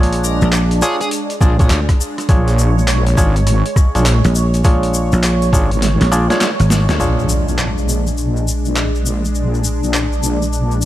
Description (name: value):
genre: glitch hop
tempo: 102 BPM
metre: 4/4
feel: swing 64% on 16ths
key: unclear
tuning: A4 = 441 Hz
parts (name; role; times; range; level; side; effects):
- warm analog pad; sustained chords; 0.0-10.9 s; Ab3 to C#5; -23 LUFS; right 1 dB; chorus, sidechain pumping
- clav; stabs; 0.0-10.9 s; D4 to D5; -21 LUFS; equal; vintage 12-bit sampler grit, sidechain pumping, low-pass filter, ping-pong delay
- dry thumbed slap bass; bass; 0.0-7.0 s; Ab1 to D2; -14 LUFS; equal; tube saturation
- boom bap sampler-style drum kit; drums; 0.0-10.1 s; handclaps, hi-hat, rim click, snare drum; -22 LUFS; equal; overdrive
- tube shaker; percussion; 0.1-10.9 s; none; -27 LUFS; left 5 dB; none
- dark smooth lead guitar; melody; 0.8-1.1 s; Ab4; -26 LUFS; equal; overdrive, ping-pong delay
- wobble bass; bass; 1.4-10.9 s; Ab1 to Bb1; -16 LUFS; equal; chorus, tube saturation
- electronic kick drum; drums; 1.4-5.7 s; none; -12 LUFS; equal; overdrive
- impact; sound effects; 7.0-9.4 s; none; -23 LUFS; equal; none
room: little or no reverb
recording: none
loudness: -13 LUFS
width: side -14 dB against mid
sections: 0.0-7.0 A section; 7.0-10.9 B section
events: kick drops out 5.8-7.0; drum fill 5.8-7.0; band accent 6.9; impact 7.0-9.4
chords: 0.0 Bb7#9